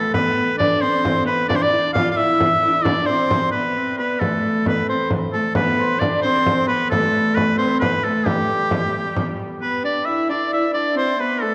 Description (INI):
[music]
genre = medieval dance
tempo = 89 BPM (dotted quarters)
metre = 6/8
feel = straight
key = unclear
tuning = A4 = 440 Hz
[part]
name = bright shawm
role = melody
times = 0.0-11.5 s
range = G4 to F5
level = -23 LUFS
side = equal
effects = none
[part]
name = hammered dulcimer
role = second line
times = 0.0-11.5 s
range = G4 to F5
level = -28 LUFS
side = equal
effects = none
[part]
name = rich viola da gamba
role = second line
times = 0.0-11.5 s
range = G3 to F4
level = -26 LUFS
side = equal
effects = none
[part]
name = frame drum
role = percussion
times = 0.1-9.5 s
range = none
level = -26 LUFS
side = equal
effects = none
[sound]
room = wet concert hall reverb, RT60 1.9 s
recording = worn, warbling old tape, cassette tape, warbly pitch drift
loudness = -19 LUFS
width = mono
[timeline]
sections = 0.0-9.6 A section; 9.6-11.5 B section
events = none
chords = none